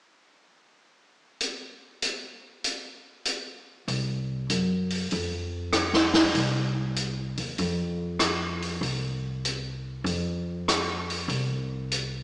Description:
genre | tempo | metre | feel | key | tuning
jazz piano trio | 97 BPM | 4/4 | swing 67% on 8ths | unclear | A4 = 440 Hz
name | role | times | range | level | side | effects
swinging big-band drum kit | drums | 1.4-12.1 s | hi-hat, rim click, snare drum | -26 LUFS | equal | none
upright bass | bass | 3.9-12.2 s | C2 to Gb2 | -29 LUFS | equal | none
room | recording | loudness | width
moderate lush hall reverb, RT60 2.3 s | live gig heard through the venue's PA, recital hall reverb, small speaker sound | -25 LUFS | side -23 dB against mid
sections
1.4-3.9 A section; 3.9-12.2 B section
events
none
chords
none

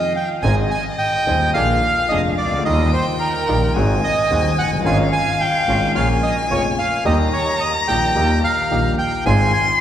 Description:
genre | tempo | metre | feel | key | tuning
tango | 109 BPM | 4/4 | rubato | Ab major | A4 = 440 Hz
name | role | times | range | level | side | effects
bandoneon | melody | 0.0-9.7 s | Bb4 to Ab5 | -20 LUFS | right 2 dB | none
warm violin | second line | 0.0-9.8 s | Eb5 to C6 | -23 LUFS | left 2 dB | none
warm concert grand piano | accompaniment | 0.0-9.5 s | Eb1 to Ab4 | -22 LUFS | left 2 dB | none
bandoneon | stabs | 0.4-9.5 s | G3 to Ab4 | -28 LUFS | right 2 dB | none
clear double bass | bass | 0.4-9.5 s | F1 to Eb2 | -22 LUFS | right 1 dB | none
room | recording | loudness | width
wet church reverb, RT60 3.5 s | recorded in a church or concert hall | -15 LUFS | side -10 dB against mid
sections
0.4-9.8 A section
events
break 0.0-0.4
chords
0.4 Ab; 1.6 Bb7; 2.7 Ebadd9; 3.8 Ab7; 4.9 Dbadd9/Ab; 6.0 Bbm; 7.1 Eb; 9.3 Ab6

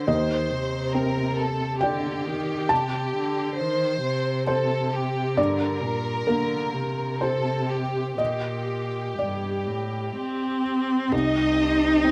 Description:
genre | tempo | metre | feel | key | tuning
neoclassical piano and strings | 60-69 BPM | 3/4 | rubato | C dorian | A4 = 441 Hz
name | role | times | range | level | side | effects
rich studio violin section | melody | 0.0-12.1 s | G4 to Eb5 | -31 LUFS | equal | none
rich cello | second line | 0.0-12.1 s | G2 to Eb4 | -28 LUFS | equal | none
felt-muted upright piano | accompaniment | 0.0-12.1 s | C2 to A5 | -30 LUFS | equal | slapback echo
clear studio string section | sustained chords | 11.1-12.1 s | C4 to C5 | -40 LUFS | equal | none
rich double bass | bass | 11.1-12.1 s | C2 | -33 LUFS | equal | none
room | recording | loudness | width
little or no reverb | recorded outdoors, with no room sound | -25 LUFS | mono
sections
0.0-11.1 A section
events
none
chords
0.1 Cmadd9/Eb; 5.4 Gm; 11.1 Cm

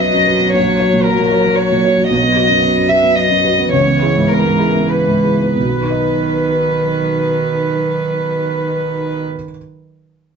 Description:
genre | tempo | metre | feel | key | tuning
neoclassical piano and strings | 91-116 BPM | 3/4 | rubato | B major | A4 = 440 Hz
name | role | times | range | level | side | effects
warm chamber violin section | melody | 0.0-9.2 s | A#4 to E5 | -15 LUFS | left 1 dB | none
rich cello | second line | 0.0-9.2 s | D#3 to F#3 | -21 LUFS | right 4 dB | none
felt-muted upright piano | accompaniment | 0.0-9.6 s | A#1 to D#5 | -17 LUFS | right 2 dB | none
warm chamber string section | sustained chords | 0.0-9.2 s | F#3 to C#5 | -25 LUFS | left 1 dB | none
room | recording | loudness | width
wet studio reverb, RT60 0.6 s | band playing live in one room, nothing above 7.8 kHz | -12 LUFS | side -6 dB against mid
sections
0.0-5.5 A section; 5.5-9.3 B section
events
slowing down 1.3-5.5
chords
0.0 B; 0.5 F#/A#; 2.1 B; 3.7 C#m7; 5.5 B

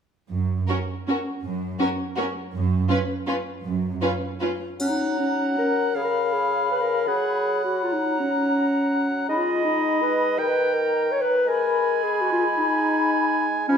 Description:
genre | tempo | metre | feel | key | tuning
classical, orchestral ballroom waltz | 149-181 BPM | 3/4 | rubato | F# major | A4 = 440 Hz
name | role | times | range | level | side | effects
rich symphonic cello section | bass | 0.3-4.0 s | F#2 | -26 LUFS | right 4 dB | none
warm symphonic violin section | melody | 0.7-4.5 s | A#4 to B4 | -31 LUFS | left 1 dB | none
warm symphonic violin section | second line | 0.7-4.5 s | E#4 to F#4 | -30 LUFS | left 1 dB | none
rich symphonic viola section | accompaniment | 0.7-4.5 s | C#4 | -28 LUFS | right 2 dB | none
clear oboe | second line | 4.8-13.8 s | D#5 to G#5 | -27 LUFS | right 3 dB | none
large flute ensemble | second line | 4.8-13.8 s | A#5 to B5 | -27 LUFS | left 4 dB | none
mellow clarinet | second line | 4.8-13.7 s | C#4 to C#5 | -23 LUFS | left 2 dB | none
mellow bassoon | accompaniment | 4.8-13.8 s | C#3 to G#3 | -29 LUFS | right 3 dB | none
triangle | percussion | 4.8-5.5 s | none | -38 LUFS | right 1 dB | none
room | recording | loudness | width
wet recital hall reverb, RT60 1.5 s | minimal, uncompressed stereo recording | -21 LUFS | side -7 dB against mid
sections
0.3-4.8 A section; 4.8-13.8 B section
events
none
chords
0.3 F#5; 4.8 F#; 5.9 C#7; 7.1 F#; 9.3 G#m; 10.4 D#; 11.5 G#m

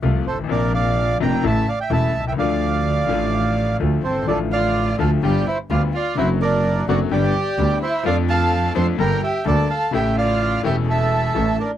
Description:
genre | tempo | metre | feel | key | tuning
tango | 127 BPM | 4/4 | rubato | D minor | A4 = 439 Hz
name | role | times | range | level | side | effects
bright concert grand piano | accompaniment | 0.0-11.6 s | E1 to A4 | -23 LUFS | left 8 dB | none
warm double bass | bass | 0.0-11.6 s | E1 to F2 | -21 LUFS | right 2 dB | none
bandoneon | melody | 0.3-11.7 s | A4 to C6 | -22 LUFS | right 4 dB | none
dark violin | second line | 4.0-11.7 s | C4 to C5 | -26 LUFS | left 1 dB | none
room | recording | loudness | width
light reverb | dry, close 1970s-style studio recording | -17 LUFS | side -11 dB against mid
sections
0.0-11.8 A section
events
none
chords
0.0 F/C; 0.5 Bbadd9; 1.4 A; 2.4 Dm; 5.2 G7; 6.2 D7/F#; 7.1 G; 8.1 Dm/F; 9.0 Gmadd9; 9.9 A

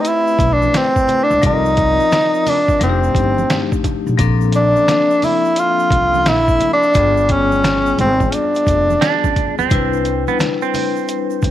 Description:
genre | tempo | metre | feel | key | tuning
hip hop, jazz-hop | 87 BPM | 4/4 | swing 65% on 16ths | unclear | A4 = 440 Hz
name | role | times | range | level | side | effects
breathy tenor saxophone | melody | 0.0-9.4 s | C4 to F4 | -14 LUFS | equal | slapback echo
vibraphone with hard mallets | accompaniment | 0.0-11.5 s | F3 to D5 | -22 LUFS | left 8 dB | none
trip hop sampler-style drum kit | drums | 0.0-11.5 s | hi-hat, kick drum, snare drum | -20 LUFS | equal | none
tube shaker and congas | percussion | 0.1-11.5 s | none | -30 LUFS | right 7 dB | none
upright bass | bass | 0.4-11.5 s | F1 to D2 | -19 LUFS | equal | none
semi-hollow electric guitar | second line | 9.0-11.5 s | B3 to D4 | -20 LUFS | right 10 dB | none
room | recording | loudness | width
light reverb | 1960s-style stereo with parts hard left and right, vinyl crackle | -13 LUFS | side -12 dB against mid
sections
0.0-11.5 A section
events
none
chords
0.0 Am9; 1.4 Cm11; 2.8 F13; 4.2 Bbmaj9; 6.9 G7b9; 9.7 Cmaj9

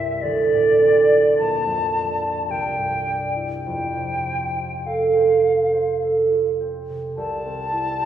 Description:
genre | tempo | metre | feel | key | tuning
classical, romantic duo for flute and harp | 49-56 BPM | 3/4 | rubato | F major | A4 = 443 Hz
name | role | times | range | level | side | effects
bright concert flute | melody | 0.0-8.1 s | D5 to A5 | -23 LUFS | left 2 dB | none
concert harp | accompaniment | 0.0-8.1 s | Bb1 to C5 | -19 LUFS | right 3 dB | none
room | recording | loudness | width
wet scoring stage reverb, RT60 1.9 s | heard from further back in the room | -18 LUFS | side -10 dB against mid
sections
0.0-7.2 A section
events
none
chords
0.2 Dm7; 1.4 Bbmaj7; 2.5 Cadd9; 3.7 F; 7.2 C

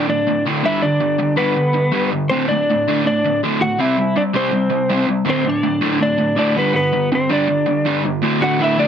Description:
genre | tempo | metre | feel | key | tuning
punk | 162 BPM | 4/4 | straight | unclear | A4 = 440 Hz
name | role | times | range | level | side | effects
lightly driven lead guitar | melody | 0.0-8.9 s | B3 to F#5 | -18 LUFS | equal | none
raw garage guitar | riff | 0.0-8.9 s | D2 to C4 | -18 LUFS | equal | overdrive
room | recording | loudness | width
light reverb | heavily compressed radio sound, multiband compression | -15 LUFS | side -8 dB against mid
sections
0.0-8.2 A section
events
none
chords
0.0 D5; 0.7 G; 2.3 D; 3.8 C; 5.3 D5; 6.6 G; 8.2 D

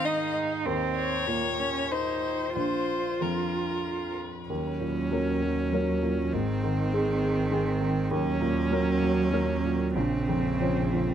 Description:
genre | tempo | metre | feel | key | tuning
neoclassical piano and strings | 92-101 BPM | 3/4 | rubato | Eb dorian | A4 = 440 Hz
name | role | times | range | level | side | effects
warm violin | melody | 0.0-4.2 s | Bb4 to Eb5 | -31 LUFS | left 7 dB | tape echo
warm cello | second line | 0.0-11.1 s | Db3 to F4 | -31 LUFS | right 5 dB | none
clear upright piano | accompaniment | 0.0-11.1 s | Bb1 to C5 | -29 LUFS | equal | none
rich viola | accompaniment | 4.5-11.1 s | C4 to Db4 | -31 LUFS | right 2 dB | none
rich double bass | bass | 4.5-11.1 s | Ab1 to Eb2 | -31 LUFS | equal | none
room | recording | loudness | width
light reverb | close, detailed microphones | -25 LUFS | side -9 dB against mid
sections
0.0-4.5 A section; 4.5-11.1 B section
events
none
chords
0.0 Ab5; 0.7 Eb5; 2.6 Bbsus2; 4.5 Ebm7; 6.3 Ab; 8.1 Ebm7; 10.0 Bbmadd9

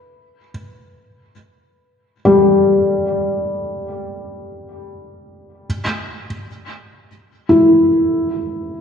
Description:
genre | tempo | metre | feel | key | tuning
ambient | free time | none | none | unclear | A4 = 439 Hz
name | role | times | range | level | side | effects
felt-muted upright piano | solo | 0.0-8.8 s | G3 to B4 | -15 LUFS | left 1 dB | diffuse ambient delay
room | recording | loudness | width
wet concert hall reverb, RT60 2.2 s | dark, warm production, nothing above 11.0 kHz | -13 LUFS | side -7 dB against mid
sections
0.0-8.8 A section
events
none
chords
0.0 Em; 5.7 N.C.

